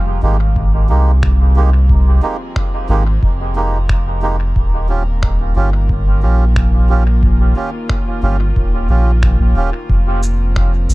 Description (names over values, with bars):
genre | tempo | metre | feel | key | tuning
ambient dub | 90 BPM | 4/4 | straight | F minor | A4 = 440 Hz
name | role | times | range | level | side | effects
dark chamber string section | sustained chords | 0.0-10.9 s | Eb3 to Bb4 | -28 LUFS | left 2 dB | none
round analog bass | bass | 0.0-10.9 s | Eb1 to C2 | -13 LUFS | equal | none
melodica | stabs | 0.2-9.7 s | Ab3 to G4 | -22 LUFS | right 4 dB | dub echo
electronic kick drum | drums | 0.6-10.7 s | none | -18 LUFS | equal | overdrive
electronic finger snaps and cabasa | drums | 1.2-10.9 s | none | -30 LUFS | equal | overdrive, dub echo
room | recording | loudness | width
studio ambience | dark, warm production | -12 LUFS | side -20 dB against mid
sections
0.0-10.9 A section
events
fade-in on string section 0.0-10.9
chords
0.0 Fm11; 4.6 Eb9; 9.9 Fsus4